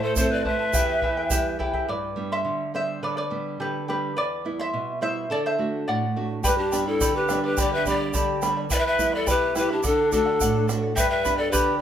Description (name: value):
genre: andean folk, Andean ensemble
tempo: 106 BPM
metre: 2/4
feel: straight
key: unclear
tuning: A4 = 440 Hz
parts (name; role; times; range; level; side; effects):
- breathy reedy pan flute; melody; 0.0-1.6, 6.5-11.8 s; G4 to E5; -25 LUFS; left 2 dB; none
- breathy bright pan flute; second line; 0.0-1.6, 6.4-11.8 s; D4 to B4; -28 LUFS; left 2 dB; none
- charango; accompaniment; 0.0-11.8 s; E4 to C6; -26 LUFS; equal; none
- nylon-string guitar; accompaniment; 0.0-11.8 s; E2 to G4; -29 LUFS; right 4 dB; none
- bombo; percussion; 0.2-1.9, 6.4-11.7 s; none; -30 LUFS; equal; none
- tube shaker; percussion; 0.2-1.4, 6.4-11.7 s; none; -32 LUFS; right 6 dB; none
room: light reverb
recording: band playing live in one room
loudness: -22 LUFS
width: side -9 dB against mid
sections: 0.0-1.9 A section; 1.9-6.4 B section; 6.4-11.8 C section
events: charango solo 1.9-6.4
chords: 0.0 Am; 0.7 Em; 1.9 G; 4.2 Em; 5.3 D; 6.4 G; 8.7 Em; 9.8 D; 11.0 G